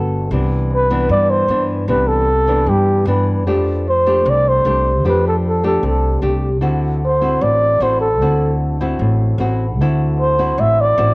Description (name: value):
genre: bossa nova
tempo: 152 BPM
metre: 4/4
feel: straight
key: unclear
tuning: A4 = 440 Hz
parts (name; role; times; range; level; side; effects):
- nylon-string guitar; accompaniment; 0.0-11.1 s; G2 to A4; -19 LUFS; left 1 dB; cassette tape
- upright bass; bass; 0.0-11.1 s; G1 to G2; -18 LUFS; equal; none
- breathy flugelhorn; melody; 0.7-11.1 s; G4 to E5; -16 LUFS; equal; cassette tape
room: moderate spring reverb, RT60 2.0 s, small room ambience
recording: home recording on cassette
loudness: -13 LUFS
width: side -27 dB against mid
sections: 0.3-11.1 A section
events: none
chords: 0.3 Cmaj9; 3.5 F69; 6.6 D9